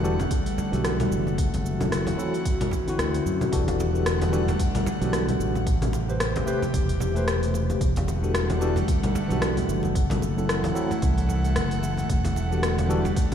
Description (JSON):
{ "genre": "sunset chillout", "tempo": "112 BPM", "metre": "4/4", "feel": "swing 57% on 16ths", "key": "E minor", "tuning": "A4 = 441 Hz", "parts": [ { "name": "tine electric piano", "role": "accompaniment", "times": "0.0-13.1 s", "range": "D3 to C5", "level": "-29 LUFS", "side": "moving between left 6 dB and right 4 dB", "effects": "medium tremolo, auto-pan, ping-pong delay" }, { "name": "airy breathy pad", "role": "sustained chords", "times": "0.0-13.3 s", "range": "C3 to F#5", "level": "-29 LUFS", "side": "equal", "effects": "chorus, vintage 12-bit sampler grit" }, { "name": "overdriven fingered electric bass", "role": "bass", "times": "0.0-13.1 s", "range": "E1 to F#2", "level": "-26 LUFS", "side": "equal", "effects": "none" }, { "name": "deep house drum kit", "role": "drums", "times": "0.0-13.3 s", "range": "congas, hi-hat, rim click, shaker", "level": "-30 LUFS", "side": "left 1 dB", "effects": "none" }, { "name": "electronic kick drum", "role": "drums", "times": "0.3-13.3 s", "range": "none", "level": "-26 LUFS", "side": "equal", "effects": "none" }, { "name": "congas and bongos", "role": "percussion", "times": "0.6-13.1 s", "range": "none", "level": "-34 LUFS", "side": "right 2 dB", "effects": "none" } ], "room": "light reverb, digital ambience", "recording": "played on a big sound system in a bare room, large studio reverb", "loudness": "-22 LUFS", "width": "side -9 dB against mid", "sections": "0.0-3.5 A section; 3.5-13.3 B section", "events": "none", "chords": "0.0 Em11; 1.4 F#m7b5; 2.5 D9; 3.5 Em11; 5.7 Am9; 7.8 Em11; 10.0 F#m7b5; 12.1 Em11", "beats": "0.31 0.85 | 1.38 1.92 2.45 2.99 | 3.52 4.06 4.60 5.13 | 5.67 6.20 6.74 7.28 | 7.81 8.35 8.88 9.42 | 9.95 10.49 11.03 11.56 | 12.10 12.63 13.17" }